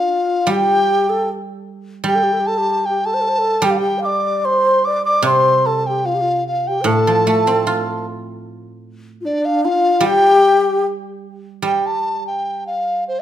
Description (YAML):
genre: chinese traditional, Chinese chamber ensemble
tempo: 75 BPM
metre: 2/4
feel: rubato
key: G shang mode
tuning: A4 = 443 Hz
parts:
  - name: mellow hollow large dizi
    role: melody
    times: 0.0-13.2 s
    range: C5 to D6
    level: -17 LUFS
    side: equal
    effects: none
  - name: breathy low xiao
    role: second line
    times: 0.0-10.8 s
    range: D4 to F5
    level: -18 LUFS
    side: left 2 dB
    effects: none
  - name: guzheng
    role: accompaniment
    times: 0.5-13.2 s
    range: A2 to F4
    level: -22 LUFS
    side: right 4 dB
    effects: none
room: moderate recital hall reverb, RT60 1.4 s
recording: minimal, uncompressed stereo recording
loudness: -14 LUFS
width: side -11 dB against mid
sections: 0.0-11.7 A section; 11.7-13.2 B section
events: none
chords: none